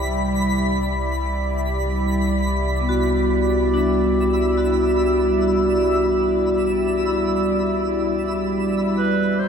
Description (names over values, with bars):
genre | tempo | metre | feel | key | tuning
ambient | free time | none | none | C lydian | A4 = 440 Hz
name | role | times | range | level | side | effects
warm analog pad | sustained chords | 0.0-9.5 s | G3 to E5 | -22 LUFS | right 1 dB | chorus, shimmer reverb
vibraphone with medium mallets | arpeggios | 0.0-9.5 s | B3 to G5 | -22 LUFS | left 1 dB | shimmer reverb, ping-pong delay
deep rumbling drone | bass | 0.0-9.5 s | C2 | -26 LUFS | equal | built-in reverb
twinkling granular texture | texture | 0.0-9.5 s | B5 to B6 | -28 LUFS | equal | built-in reverb, shimmer reverb
mellow clarinet | melody | 9.0-9.5 s | B4 to C5 | -23 LUFS | right 6 dB | none
room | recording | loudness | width
wet cathedral reverb, RT60 5.9 s | in a vast, echoing space | -18 LUFS | side -7 dB against mid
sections
0.0-9.5 A section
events
none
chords
0.0 Cmaj7